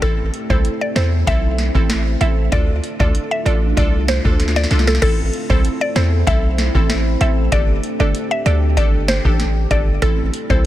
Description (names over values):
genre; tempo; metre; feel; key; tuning
dancehall; 96 BPM; 4/4; straight; A minor; A4 = 440 Hz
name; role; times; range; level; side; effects
mallet-like synth pluck; melody; 0.0-10.6 s; A4 to E5; -23 LUFS; equal; chorus, tape echo
glassy wavetable pluck; accompaniment; 0.0-10.7 s; C4 to A4; -24 LUFS; right 1 dB; chorus
deep dark ambient pad; sustained chords; 0.0-10.7 s; D3 to G4; -27 LUFS; equal; chorus, built-in reverb, sidechain pumping
hard-hitting 808-style bass; bass; 0.0-10.6 s; G1 to E2; -17 LUFS; equal; none
booming analog drum machine; drums; 0.0-10.7 s; crash cymbal, hi-hat, kick drum, snare drum; -18 LUFS; equal; vintage 12-bit sampler grit
room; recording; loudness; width
digital ambience; dense, heavily limited modern master; -14 LUFS; side -14 dB against mid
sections
0.0-5.0 A section; 5.0-10.7 B section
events
drum fill 4.4-5.0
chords
0.0 Am; 2.5 Dm; 5.0 Am; 7.5 Gsus2; 10.0 Am